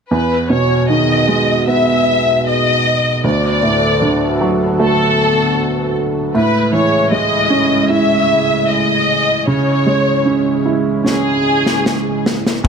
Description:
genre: pop ballad.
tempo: 77 BPM.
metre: 4/4.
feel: straight.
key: E major.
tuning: A4 = 440 Hz.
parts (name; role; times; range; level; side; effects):
warm studio violin section; melody; 0.1-12.7 s; G#4 to E5; -16 LUFS; left 2 dB; none.
clear upright piano; accompaniment; 0.1-12.7 s; D2 to E4; -16 LUFS; right 3 dB; none.
chorused pulse-width pad; sustained chords; 0.1-12.7 s; B2 to A4; -20 LUFS; equal; none.
modern studio drum kit; drums; 11.1-12.7 s; kick drum, snare drum, toms; -17 LUFS; left 1 dB; none.
room: light reverb.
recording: none.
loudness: -12 LUFS.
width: side -6 dB against mid.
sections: 0.1-12.7 A section.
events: drum fill 11.1-12.6.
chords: 0.1 Emaj7; 3.2 D6; 6.3 Amaj7; 9.5 C#m.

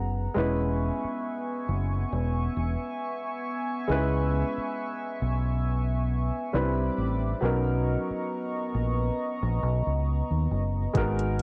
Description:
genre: contemporary R&B.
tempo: 68 BPM.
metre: 4/4.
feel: swing 54% on 16ths.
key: unclear.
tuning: A4 = 439 Hz.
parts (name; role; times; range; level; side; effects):
dark baby grand piano; accompaniment; 0.0-11.4 s; F#3 to B4; -34 LUFS; equal; cassette tape.
chorused pulse-width pad; sustained chords; 0.0-11.4 s; B3 to D6; -35 LUFS; equal; cassette tape.
deep dub fingered electric bass; bass; 0.0-11.4 s; E1 to D#2; -29 LUFS; equal; none.
smooth R&B drum kit; drums; 11.0-11.4 s; hi-hat, kick drum; -31 LUFS; equal; none.
room: light reverb.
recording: home recording on cassette.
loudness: -28 LUFS.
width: mono.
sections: 0.0-11.4 A section.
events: none.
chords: 0.4 E6; 3.9 C#m7; 6.5 Cmaj9; 7.4 Bmaj9.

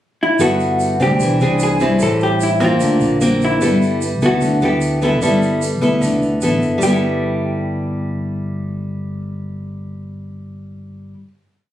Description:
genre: bossa nova.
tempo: 149 BPM.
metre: 4/4.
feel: straight.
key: G major.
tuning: A4 = 440 Hz.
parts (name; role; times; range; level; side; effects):
vintage hollow-body jazz guitar; melody; 0.2-11.1 s; E4 to A4; -19 LUFS; equal; none.
nylon-string guitar; accompaniment; 0.4-11.3 s; A2 to A4; -17 LUFS; left 1 dB; none.
fingered electric bass; bass; 0.4-11.1 s; E1 to E2; -22 LUFS; equal; none.
tube shaker; percussion; 0.4-6.9 s; none; -31 LUFS; right 3 dB; none.
room: moderate studio reverb, RT60 0.5 s.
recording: recorded on a phone in the room, studio reverb.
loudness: -14 LUFS.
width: side -12 dB against mid.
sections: 0.0-0.4 pickup bar; 0.4-6.8 A section; 6.8-10.0 final chord.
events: none.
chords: 0.4 G69; 1.2 E7alt; 2.0 Am7; 2.8 D7alt; 3.6 G69.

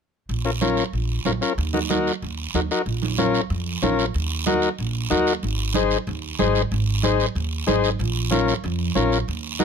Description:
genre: latin, cumbia.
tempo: 187 BPM.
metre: 4/4.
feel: straight.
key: Bb minor.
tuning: A4 = 437 Hz.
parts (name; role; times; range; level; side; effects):
upright bass; bass; 0.3-9.6 s; Ab1 to F2; -25 LUFS; right 1 dB; none.
guiro; percussion; 0.3-9.6 s; none; -30 LUFS; right 6 dB; none.
combo organ; accompaniment; 0.4-9.6 s; Db4 to C5; -21 LUFS; left 6 dB; none.
congas; percussion; 0.6-9.6 s; none; -28 LUFS; right 11 dB; none.
room: little or no reverb.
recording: close, detailed microphones.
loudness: -20 LUFS.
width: side -6 dB against mid.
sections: 0.3-2.9 A section; 2.9-9.6 B section.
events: none.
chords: 0.3 Bbm; 1.6 Ebm; 2.9 Bbm; 4.1 Ebm; 5.4 Ab; 8.0 Bbm.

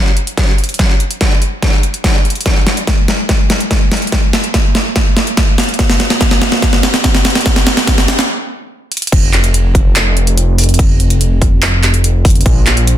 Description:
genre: future bass.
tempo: 144 BPM.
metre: 4/4.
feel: half-time.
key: unclear.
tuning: A4 = 440 Hz.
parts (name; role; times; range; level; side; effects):
dubstep drum kit; drums; 0.2-13.0 s; crash cymbal, handclaps, hi-hat, snare drum; -14 LUFS; equal; overdrive.
electronic kick drum; drums; 0.4-12.5 s; none; -12 LUFS; equal; overdrive.
wide detuned saw bass; bass; 9.1-13.0 s; F1 to Bb1; -12 LUFS; equal; chorus, sidechain pumping.
room: light reverb.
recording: dense, heavily limited modern master.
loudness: -10 LUFS.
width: side -11 dB against mid.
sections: 0.0-9.1 A section; 9.1-13.0 B section.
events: build-up 0.0-9.1; drum fill 0.0-8.3, 8.9; stop 8.3-9.1; drop 9.1-13.0.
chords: none.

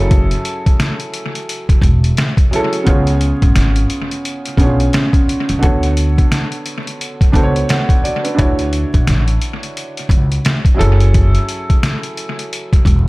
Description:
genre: hip hop, boom-bap hip-hop.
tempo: 87 BPM.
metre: 4/4.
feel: swing 60% on 16ths.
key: F# minor.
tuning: A4 = 441 Hz.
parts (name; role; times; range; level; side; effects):
dark upright piano; accompaniment; 0.0-13.1 s; C#3 to F#5; -20 LUFS; right 1 dB; high-pass filter, low-pass filter.
upright bass; bass; 0.0-13.1 s; E1 to D2; -15 LUFS; equal; none.
trip hop sampler-style drum kit; drums; 0.1-13.1 s; hi-hat, kick drum, snare drum; -14 LUFS; equal; analog delay.
room: small room ambience.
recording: echo-heavy mix, vinyl crackle.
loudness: -12 LUFS.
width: side -22 dB against mid.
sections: 0.0-13.1 A section.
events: none.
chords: 0.0 F#m9; 2.9 C#7; 5.6 Bm7/D; 8.4 Dmaj9; 10.8 F#m9.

